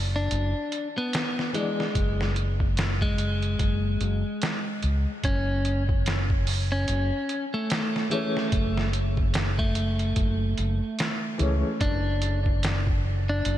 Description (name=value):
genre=trip hop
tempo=73 BPM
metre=4/4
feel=swing 59% on 16ths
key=unclear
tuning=A4 = 440 Hz
part: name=fingered electric bass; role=bass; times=0.0-13.6 s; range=F#1 to C#2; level=-26 LUFS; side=equal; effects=none
part: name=clean electric guitar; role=melody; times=0.2-13.6 s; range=G#3 to D4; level=-29 LUFS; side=equal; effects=dub echo
part: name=trip hop sampler-style drum kit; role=drums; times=0.3-13.6 s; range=hi-hat, kick drum, snare drum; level=-28 LUFS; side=equal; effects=none
part: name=dark upright piano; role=accompaniment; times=1.5-1.9, 8.1-11.7 s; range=E3 to D4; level=-33 LUFS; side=left 2 dB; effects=tremolo, tape echo
room=light reverb, digital ambience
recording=none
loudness=-23 LUFS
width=side -12 dB against mid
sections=0.0-13.6 A section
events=none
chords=0.0 N.C.; 5.2 A/F#; 11.8 G#7(b5, no3)/F# (rootless)